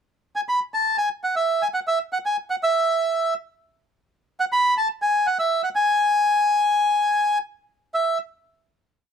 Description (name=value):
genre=tango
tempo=118 BPM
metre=4/4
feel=rubato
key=unclear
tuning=A4 = 440 Hz
part: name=bandoneon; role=solo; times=0.4-8.2 s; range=E5 to B5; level=-19 LUFS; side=equal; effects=none
room=little or no reverb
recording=close, detailed microphones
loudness=-20 LUFS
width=side -7 dB against mid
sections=0.0-7.9 A section; 7.9-9.1 final note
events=none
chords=none